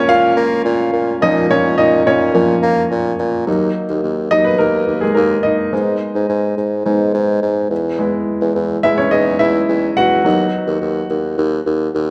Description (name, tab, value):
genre	piano-driven pop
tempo	106 BPM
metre	4/4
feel	straight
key	unclear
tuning	A4 = 440 Hz
part	clear grand piano	accompaniment	0.0-12.1 s	E#3 to F#5	-18 LUFS	equal	none
part	warm bassoon	bass	0.0-12.1 s	D#2-22c to A#3	-19 LUFS	equal	none
room	moderate scoring stage reverb, RT60 2.0 s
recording	none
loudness	-16 LUFS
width	mono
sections	0.0-3.5 A section; 3.5-12.1 B section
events	grand piano solo 0.0-3.5, 3.5-12.1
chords	0.0 A#m; 3.5 D#m; 5.7 G#m; 7.7 E; 10.3 B/D#